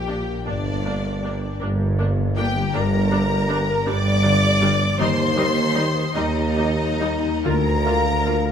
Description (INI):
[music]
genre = classical, slow romantic movement for symphony orchestra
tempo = 44-54 BPM (dotted quarters)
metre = 6/8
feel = rubato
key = unclear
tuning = A4 = 441 Hz
[part]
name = rich symphonic violin section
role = melody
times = 0.0-8.5 s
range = D5 to D6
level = -27 LUFS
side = left 2 dB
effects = none
[part]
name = rich symphonic violin section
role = second line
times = 0.0-8.5 s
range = D4 to D5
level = -26 LUFS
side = left 2 dB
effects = none
[part]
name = concert harp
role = arpeggios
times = 0.0-8.5 s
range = G2 to F6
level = -27 LUFS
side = left 10 dB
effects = none
[part]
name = rich symphonic double bass section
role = bass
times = 0.0-8.5 s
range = G1 to Eb2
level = -26 LUFS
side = right 2 dB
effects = none
[part]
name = warm symphonic cello section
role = bass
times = 0.0-8.5 s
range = D2 to Bb2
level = -26 LUFS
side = right 2 dB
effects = none
[part]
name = warm tuba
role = bass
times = 0.0-8.5 s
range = G1 to Eb2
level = -26 LUFS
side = right 3 dB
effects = none
[part]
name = rich symphonic viola section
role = accompaniment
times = 0.1-8.3 s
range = G3 to F4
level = -29 LUFS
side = right 1 dB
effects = none
[sound]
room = moderate scoring stage reverb, RT60 1.8 s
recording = none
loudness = -18 LUFS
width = side -8 dB against mid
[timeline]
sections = 0.0-8.5 A section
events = none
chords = 0.5 Gm; 5.0 Cm/Eb; 7.5 Bb/D